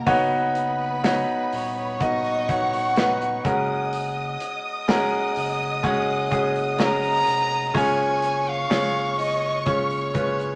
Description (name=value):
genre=pop ballad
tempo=62 BPM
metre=4/4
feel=straight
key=F# major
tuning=A4 = 440 Hz
part: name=warm studio violin section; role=second line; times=0.0-10.6 s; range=B4 to D#6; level=-32 LUFS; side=equal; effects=none
part: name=clear baby grand piano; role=accompaniment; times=0.0-10.6 s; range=G#3 to D#5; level=-26 LUFS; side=equal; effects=none
part: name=saturated sub bass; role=bass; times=0.0-10.6 s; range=D#1 to F#1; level=-37 LUFS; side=equal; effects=none
part: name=modern studio drum kit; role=drums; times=0.1-10.6 s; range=hi-hat, kick drum, snare drum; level=-30 LUFS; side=equal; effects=none
part: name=warm violin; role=melody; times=1.5-10.6 s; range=C#5 to A#5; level=-27 LUFS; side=equal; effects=none
room=wet studio reverb, RT60 0.9 s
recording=vinyl crackle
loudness=-23 LUFS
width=mono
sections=0.0-10.6 A section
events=none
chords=0.1 Badd9; 3.4 F#add9; 7.7 C#/F#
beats=| 0.07 1.04 2.00 2.97 | 3.93 4.88 5.84 6.79 | 7.75 8.70 9.66